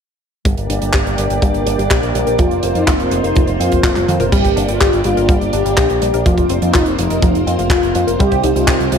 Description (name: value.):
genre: italo disco.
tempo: 124 BPM.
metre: 4/4.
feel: straight.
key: G minor.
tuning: A4 = 444 Hz.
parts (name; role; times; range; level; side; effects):
string machine, full ensemble; sustained chords; 0.5-9.0 s; G3 to D5; -20 LUFS; right 1 dB; ensemble chorus, vintage 12-bit sampler grit.
analog pluck; arpeggios; 0.5-9.0 s; F3 to Bb4; -21 LUFS; left 4 dB; chorus, vintage 12-bit sampler grit, tape echo.
picked electric bass with an envelope filter; bass; 0.5-9.0 s; F1 to F2; -20 LUFS; equal; none.
kick drum; drums; 0.5-8.8 s; none; -16 LUFS; equal; none.
tight funk drum kit; drums; 0.5-9.0 s; crash cymbal, handclaps, hi-hat, toms; -22 LUFS; right 1 dB; gated reverb.
mellow synth brass; melody; 2.4-9.0 s; Eb4 to G4; -19 LUFS; equal; chorus, tape echo.
room: light reverb, small room ambience.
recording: none.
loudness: -12 LUFS.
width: side -7 dB against mid.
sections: 0.5-4.3 A section; 4.3-9.0 B section.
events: filter sweep on synth arpeggio sound 0.5-4.3; drum fill 4.0-4.3.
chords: 0.5 Gm; 2.4 Fsus4; 4.3 Gm; 6.3 Fsus4; 8.2 Cm.